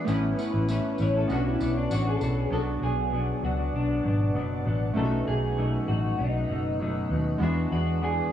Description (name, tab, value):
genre	indie pop, bedroom pop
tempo	98 BPM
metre	4/4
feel	straight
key	B dorian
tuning	A4 = 439 Hz
part	semi-hollow electric guitar	accompaniment	0.0-8.3 s	B2 to C#5	-31 LUFS	left 3 dB	lush chorus, warbly pitch drift
part	warm analog keys	accompaniment	0.0-8.3 s	F#3 to F#4	-32 LUFS	right 3 dB	chorus
part	granular cloud pad	sustained chords	0.0-8.3 s	B4 to D#6	-39 LUFS	right 2 dB	built-in reverb
part	vintage muted fingered electric bass	bass	0.1-8.2 s	F#1 to E2	-28 LUFS	equal	none
part	tambourine	percussion	0.1-2.4 s	none	-49 LUFS	right 3 dB	dub echo
part	electric guitar through a small old amp	melody	1.0-8.3 s	D4 to C#5	-32 LUFS	left 1 dB	lush chorus, dub echo
room	moderate echo chamber reverb, RT60 2.3 s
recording	echo-heavy mix, cassette tape, studio reverb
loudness	-24 LUFS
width	side -10 dB against mid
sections	0.0-2.5 A section; 2.5-8.3 B section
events	clean electric guitar solo 0.0-2.5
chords	0.1 Aadd9; 1.3 Bmadd9; 2.5 Bm; 5.0 B7; 7.4 E7